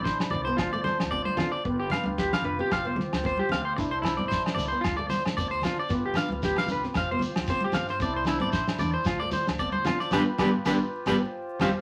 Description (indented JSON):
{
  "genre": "highlife guitar band",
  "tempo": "113 BPM",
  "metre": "4/4",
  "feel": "swing 55% on 16ths",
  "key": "C major",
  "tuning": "A4 = 440 Hz",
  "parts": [
    { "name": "nylon-string guitar", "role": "accompaniment", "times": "0.0-11.7 s", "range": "G3 to F4", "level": "-33 LUFS", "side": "equal", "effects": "none" },
    { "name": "mellow accordion", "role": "sustained chords", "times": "0.0-11.8 s", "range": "D4 to C5", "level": "-37 LUFS", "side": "equal", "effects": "none" },
    { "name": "electric guitar at the edge of break-up", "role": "arpeggios", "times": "0.0-11.7 s", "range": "E4 to F5", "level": "-31 LUFS", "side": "equal", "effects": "none" },
    { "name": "upright bass", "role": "bass", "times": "0.0-11.7 s", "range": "F1 to D3", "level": "-40 LUFS", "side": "equal", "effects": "none" },
    { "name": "damped 70s drum kit", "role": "drums", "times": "0.1-11.7 s", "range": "kick drum, snare drum", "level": "-33 LUFS", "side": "equal", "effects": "none" },
    { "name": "agogo bells", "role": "percussion", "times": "0.2-11.7 s", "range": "none", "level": "-39 LUFS", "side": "equal", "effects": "none" },
    { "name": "congas", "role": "percussion", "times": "0.3-11.7 s", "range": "none", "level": "-38 LUFS", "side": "equal", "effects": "none" },
    { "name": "shekere", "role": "percussion", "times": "3.8-11.7 s", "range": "none", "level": "-42 LUFS", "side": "equal", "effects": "none" }
  ],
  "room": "wet studio reverb, RT60 0.5 s",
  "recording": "vinyl crackle",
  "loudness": "-27 LUFS",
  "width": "mono",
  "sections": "0.0-11.8 A section",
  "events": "band accent 10.1-11.8",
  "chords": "0.0 Cadd9; 0.6 Dm7; 1.7 Fsus2; 3.8 Cadd9; 4.8 Dm7; 5.9 G7; 7.0 Fsus2; 8.0 Cadd9; 9.1 Dm7; 10.1 G7; 11.2 Fsus2",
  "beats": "0.05 0.59 1.12 | 1.65 2.19 2.72 3.25 | 3.78 4.31 4.84 5.37 | 5.90 6.43 6.96 7.49 | 8.02 8.55 9.07 9.61 | 10.13 10.66 11.20 11.73"
}